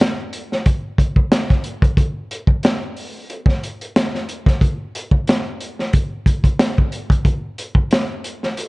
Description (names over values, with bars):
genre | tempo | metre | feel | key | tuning
R&B | 91 BPM | 4/4 | swing 54% on 16ths | none | none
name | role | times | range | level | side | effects
crunchy breakbeat drum kit | drums | 0.0-8.7 s | hi-hat, kick drum, snare drum | -16 LUFS | equal | none
room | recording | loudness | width
little or no reverb | dark, warm production, nothing above 10.5 kHz | -16 LUFS | side -24 dB against mid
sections
0.0-7.2 A section; 7.2-8.7 B section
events
none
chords
none